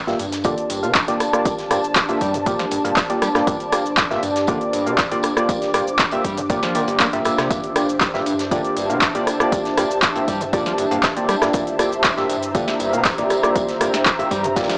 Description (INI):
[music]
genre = acid house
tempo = 119 BPM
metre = 4/4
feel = straight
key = G dorian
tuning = A4 = 439 Hz
[part]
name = dark analog pad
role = sustained chords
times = 0.3-14.8 s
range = D4 to E5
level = -26 LUFS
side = equal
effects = chorus, sidechain pumping
[part]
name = round analog bass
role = bass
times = 0.0-14.7 s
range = G1 to G2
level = -35 LUFS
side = equal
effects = tube saturation, sidechain pumping
[part]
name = ethereal airy pad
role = texture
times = 0.3-14.8 s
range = G4 to D6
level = -26 LUFS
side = equal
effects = ensemble chorus, built-in reverb, sidechain pumping
[part]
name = overdriven acid bass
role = riff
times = 0.1-14.8 s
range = G1 to Bb3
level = -28 LUFS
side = equal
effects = distortion, lush chorus, sidechain pumping, tape echo
[part]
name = deep mellow chord stab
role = stabs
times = 0.1-14.8 s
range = Bb3 to F5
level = -22 LUFS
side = equal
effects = chorus, tape echo
[part]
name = booming analog drum machine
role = drums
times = 0.1-14.8 s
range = cabasa, handclaps, hi-hat, rim click, snare drum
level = -20 LUFS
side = equal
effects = none
[part]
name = modern studio drum kit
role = drums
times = 0.1-14.8 s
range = hi-hat, snare drum, tambourine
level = -32 LUFS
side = equal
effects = high-pass filter on hats, high-pass filter on snare, high-pass filter on perc, high-pass filter on room
[part]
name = electronic kick drum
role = drums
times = 0.4-14.7 s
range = none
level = -26 LUFS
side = equal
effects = none
[sound]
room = light reverb, digital ambience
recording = dry, gritty hardware recording, small speaker sound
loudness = -16 LUFS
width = side -30 dB against mid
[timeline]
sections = 0.0-14.8 A section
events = none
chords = 0.0 Gm7